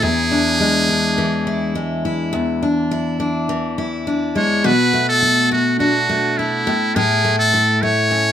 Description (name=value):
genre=pop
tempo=104 BPM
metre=4/4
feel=straight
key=unclear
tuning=A4 = 437 Hz
part: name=trumpet with metal mute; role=melody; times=0.0-8.3 s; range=E4 to C#5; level=-17 LUFS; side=right 1 dB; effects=none
part: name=picked steel-string acoustic guitar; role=accompaniment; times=0.0-8.3 s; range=E2 to F#4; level=-18 LUFS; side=left 1 dB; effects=none
room=light reverb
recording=minimal, uncompressed stereo recording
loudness=-15 LUFS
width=side -10 dB against mid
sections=0.0-2.3 A section; 2.3-4.6 B section; 4.6-8.3 C section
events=none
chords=0.0 E7; 4.6 Bm7; 6.7 A